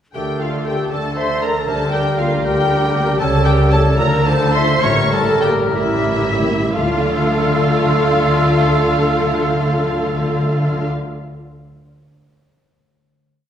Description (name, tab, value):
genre	classical, dramatic, fast romantic movement for symphony orchestra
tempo	57-80 BPM (dotted quarters)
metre	6/8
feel	straight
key	D minor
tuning	A4 = 437 Hz
part	dark symphonic violin section	melody	0.1-10.8 s	E5 to C#6	-24 LUFS	left 2 dB	none
part	bright oboe	second line	0.1-10.8 s	A4 to Bb4	-26 LUFS	right 2 dB	none
part	hollow concert flute	second line	0.1-10.8 s	G4 to E5	-25 LUFS	left 1 dB	none
part	rich symphonic violin section	second line	0.1-10.9 s	F4 to C#6	-26 LUFS	left 2 dB	none
part	clear symphonic double bass section	bass	0.1-10.8 s	A1 to D2	-23 LUFS	right 2 dB	none
part	warm symphonic cello section	bass	0.1-10.8 s	A2 to D3	-24 LUFS	right 2 dB	none
part	clear clarinet	second line	0.2-10.8 s	E4 to C#5	-25 LUFS	left 2 dB	none
part	mellow bassoon	accompaniment	0.2-10.8 s	F3 to A3	-25 LUFS	right 1 dB	none
part	warm symphonic viola section	accompaniment	0.2-10.8 s	E4 to C#5	-24 LUFS	right 1 dB	none
part	concert harp	arpeggios	0.2-11.1 s	A2 to D5	-24 LUFS	left 3 dB	none
part	dark French horn section	sustained chords	0.7-10.8 s	A3 to A4	-27 LUFS	left 2 dB	none
part	timpani	percussion	1.7-2.4, 4.8-10.8 s	A2 to D3	-22 LUFS	equal	none
room	wet recital hall reverb, RT60 1.6 s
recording	heard from further back in the room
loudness	-14 LUFS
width	side -9 dB against mid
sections	0.2-6.8 A section; 6.8-10.8 final chord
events	slowing down 2.4-6.8; timpani fill 4.8-6.8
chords	0.2 D5; 1.7 Gm/D; 3.2 A7/C#; 4.0 Dm; 4.8 A7b9; 6.8 Dm